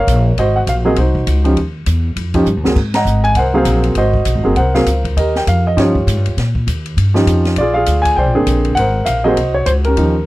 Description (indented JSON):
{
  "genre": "jazz piano trio",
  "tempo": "200 BPM",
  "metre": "4/4",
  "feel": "swing 60% on 8ths",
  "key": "unclear",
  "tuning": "A4 = 440 Hz",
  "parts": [
    { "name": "warm grand piano", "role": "melody", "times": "0.0-10.3 s", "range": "D3 to Bb5", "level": "-14 LUFS", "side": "equal", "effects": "none" },
    { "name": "upright bass", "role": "bass", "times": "0.0-10.3 s", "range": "Gb1 to Bb2", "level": "-15 LUFS", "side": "equal", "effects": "none" },
    { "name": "open jazz drum kit", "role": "drums", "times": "0.1-10.1 s", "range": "crash cymbal, hi-hat, kick drum, ride cymbal, snare drum", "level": "-24 LUFS", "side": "equal", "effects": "none" }
  ],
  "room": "little or no reverb",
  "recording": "dry, close 1970s-style studio recording",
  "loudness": "-12 LUFS",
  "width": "side -18 dB against mid",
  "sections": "0.0-10.3 A section",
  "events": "drum fill 2.5; band accent 2.9",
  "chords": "0.4 Ab9; 1.6 Ebsus2; 2.8 Ab9; 5.2 Eb9; 7.6 Bb9; 8.8 Ab9",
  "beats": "0.07 | 0.37 0.67 0.97 1.27 | 1.57 1.87 2.17 2.47 | 2.77 3.07 3.37 3.67 | 3.97 4.27 4.57 4.87 | 5.17 5.47 5.77 6.07 | 6.37 6.67 6.97 7.27 | 7.57 7.87 8.17 8.47 | 8.77 9.07 9.37 9.67 | 9.97"
}